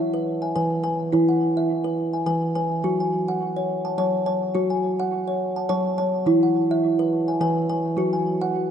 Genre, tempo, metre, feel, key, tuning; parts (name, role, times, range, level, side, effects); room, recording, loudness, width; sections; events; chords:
world meditative, meditative tuned percussion; 105 BPM; 3/4; swing 54% on 16ths; A4 = 440 Hz
kalimba; solo; 0.0-8.7 s; E3 to A5; -20 LUFS; equal; diffuse ambient delay
wet church reverb, RT60 3.3 s; nothing above 10.5 kHz; -20 LUFS; side -8 dB against mid
0.0-8.7 A section
0.0 E; 2.8 F#m; 6.3 E; 8.0 N.C.